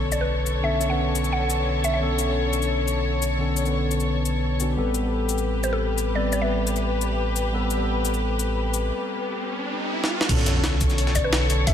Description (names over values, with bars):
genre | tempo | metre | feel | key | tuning
liquid drum and bass | 174 BPM | 4/4 | straight | B minor | A4 = 441 Hz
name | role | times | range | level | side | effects
mellow tine electric piano | accompaniment | 0.0-11.7 s | D3 to B4 | -27 LUFS | left 1 dB | lush chorus, digital delay
dark studio string section | sustained chords | 0.0-11.7 s | D3 to C#5 | -28 LUFS | left 3 dB | sidechain pumping
sub bass with octave | bass | 0.0-11.7 s | A1 to B1 | -25 LUFS | equal | none
sub drop and riser | sound effects | 0.0-0.6, 8.7-11.7 s | none | -31 LUFS | right 1 dB | none
mallet-like synth pluck | melody | 0.1-2.0, 5.6-6.7, 11.2-11.7 s | A4 to F#5 | -28 LUFS | equal | chorus, dub echo
jungle sampler-style drum kit | drums | 0.1-11.7 s | cabasa, crash cymbal, hi-hat, snare drum | -27 LUFS | left 2 dB | none
breakbeat sampler-style drum kit | drums | 10.3-11.7 s | hi-hat, snare drum | -32 LUFS | equal | high-pass filter on hats, high-pass filter on snare
electronic kick drum | drums | 10.3-11.7 s | none | -23 LUFS | equal | none
room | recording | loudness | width
light reverb, digital ambience | none | -21 LUFS | side -9 dB against mid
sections
0.0-10.3 A section; 10.3-11.7 B section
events
impact 0.0-0.6, 10.3-11.7; riser 8.7-10.3; drum fill 10.0; drop 10.3-11.7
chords
0.0 Bm9; 4.8 Am9; 10.3 Bm9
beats
0.29 | 0.64 0.98 1.33 1.67 | 2.02 2.36 2.71 3.05 | 3.40 3.74 4.08 4.43 | 4.78 5.12 5.46 5.81 | 6.15 6.50 6.84 7.19 | 7.53 7.88 8.22 8.57 | 8.91 9.26 9.60 9.95 | 10.29 10.64 10.98 11.33 | 11.67